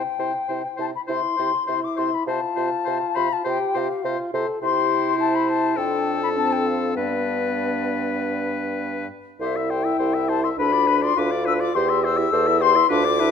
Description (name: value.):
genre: quick classical-period movement for wind quintet.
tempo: 102 BPM.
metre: 4/4.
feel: rubato.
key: C major.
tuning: A4 = 439 Hz.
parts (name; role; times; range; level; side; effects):
concert flute; melody; 0.0-13.3 s; D5 to E6; -23 LUFS; left 8 dB; none.
clear oboe; second line; 0.0-13.3 s; A4 to E5; -29 LUFS; left 5 dB; none.
dark clarinet; accompaniment; 0.0-13.3 s; D4 to G4; -30 LUFS; right 7 dB; none.
mellow bassoon; bass; 0.0-13.3 s; C2 to C3; -27 LUFS; right 2 dB; none.
warm French horn; accompaniment; 1.1-13.3 s; B3 to A4; -27 LUFS; equal; none.
room: moderate concert hall reverb, RT60 2.0 s.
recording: close, detailed microphones.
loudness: -20 LUFS.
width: side -7 dB against mid.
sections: 0.0-13.3 A section.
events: none.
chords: 0.0 C; 2.3 F/C; 4.6 C; 5.8 Dm/F; 7.0 G; 9.4 C; 10.6 Bdim/D; 11.8 C/E.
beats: 0.49 1.09 1.68 | 2.27 2.85 3.45 4.04 | 4.62 5.19 5.77 6.36 | 6.96 7.57 8.18 8.79 | 9.40 10.00 10.58 11.17 | 11.75 12.32 12.90.